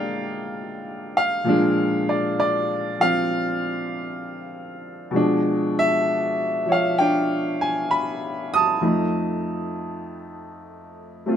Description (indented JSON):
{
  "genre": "solo jazz",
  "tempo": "65 BPM",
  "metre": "4/4",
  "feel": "swing 68% on 8ths",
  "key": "unclear",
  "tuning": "A4 = 441 Hz",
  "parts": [
    { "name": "clear upright piano", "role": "solo", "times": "0.0-11.4 s", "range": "F2 to Eb6", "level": "-21 LUFS", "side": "equal", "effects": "none" }
  ],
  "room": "light reverb",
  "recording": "close, detailed microphones",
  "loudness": "-20 LUFS",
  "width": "side -9 dB against mid",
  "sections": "0.0-11.4 A section",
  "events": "none",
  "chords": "0.0 Bb7; 5.1 Bdim7; 8.8 F7",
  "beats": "0.54 | 1.46 2.38 3.30 4.22 | 5.14 6.06 6.98 7.90 | 8.82 9.74 10.66"
}